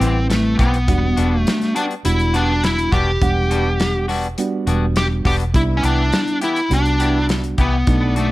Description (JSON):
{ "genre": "straight-eighth soul blues", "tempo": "103 BPM", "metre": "4/4", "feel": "straight", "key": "E minor", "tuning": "A4 = 439 Hz", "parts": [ { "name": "dark smooth lead guitar", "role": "melody", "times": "0.0-8.3 s", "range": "A3 to G4", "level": "-20 LUFS", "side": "left 1 dB", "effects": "overdrive" }, { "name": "bright reed electric piano", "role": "accompaniment", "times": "0.0-8.3 s", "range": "F#3 to F#5", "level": "-24 LUFS", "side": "right 4 dB", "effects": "spring reverb" }, { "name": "clean electric guitar", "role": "stabs", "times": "0.0-8.3 s", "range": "D#3 to G4", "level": "-26 LUFS", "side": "left 3 dB", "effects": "plate reverb" }, { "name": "vintage muted fingered electric bass", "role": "bass", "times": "0.0-8.3 s", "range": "E1 to C2", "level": "-19 LUFS", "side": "equal", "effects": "none" }, { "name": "warm soul drum kit", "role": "drums", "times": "0.0-8.3 s", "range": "hi-hat, kick drum, snare drum", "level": "-21 LUFS", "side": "equal", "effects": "none" }, { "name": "warm horn section", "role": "sustained chords", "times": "5.5-8.3 s", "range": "D4 to E5", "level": "-32 LUFS", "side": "left 1 dB", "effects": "plate reverb" } ], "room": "light reverb", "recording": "none", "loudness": "-15 LUFS", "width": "side -18 dB against mid", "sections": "0.0-8.3 A section", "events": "none", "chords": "0.0 Am9; 0.9 Em9; 5.5 Cmaj7" }